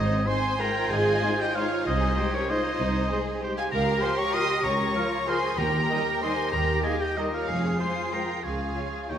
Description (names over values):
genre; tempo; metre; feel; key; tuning
classical; 191 BPM; 3/4; uneven beats, rubato; Ab major; A4 = 440 Hz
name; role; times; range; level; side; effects
warm symphonic violin section; melody; 0.0-9.2 s; Bb4 to C6; -34 LUFS; left 4 dB; none
clear oboe; second line; 0.0-9.2 s; Db5 to Eb6; -30 LUFS; right 1 dB; none
silver concert flute; second line; 0.0-9.2 s; Db6 to C7; -36 LUFS; equal; none
warm clarinet; second line; 0.0-9.2 s; Eb4 to C5; -36 LUFS; left 2 dB; none
warm symphonic violin section; second line; 0.0-9.2 s; Db5 to Eb6; -37 LUFS; left 3 dB; none
warm symphonic viola section; accompaniment; 0.0-9.2 s; Db4 to Eb5; -31 LUFS; right 1 dB; none
dark tuba; bass; 0.0-9.2 s; F1 to Eb2; -35 LUFS; right 2 dB; none
rich studio double bass section; bass; 0.0-9.2 s; Ab1 to F2; -31 LUFS; right 1 dB; none
warm symphonic cello section; bass; 0.0-9.2 s; C4 to Bb4; -33 LUFS; right 1 dB; none
mellow French horn section; sustained chords; 0.3-9.2 s; F3 to F4; -36 LUFS; left 3 dB; none
clear trumpet; stabs; 0.3-9.2 s; Bb4 to Eb5; -36 LUFS; right 2 dB; none
timpani; percussion; 5.6-6.0 s; Eb3; -38 LUFS; left 1 dB; none
room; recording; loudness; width
wet concert hall reverb, RT60 2.3 s; none; -23 LUFS; side -9 dB against mid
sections
0.0-9.2 A section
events
none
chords
0.0 Ab; 1.9 Ab/C; 3.7 Bbm/Db; 5.6 Eb; 7.5 Fm; 8.4 Db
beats
0.27 0.60 | 0.91 1.23 1.56 | 1.86 2.17 2.50 | 2.80 3.10 3.42 | 3.72 4.02 4.33 | 4.64 4.95 5.27 | 5.58 5.89 6.22 | 6.52 6.83 7.17 | 7.48 7.79 8.13 | 8.44 8.76 9.10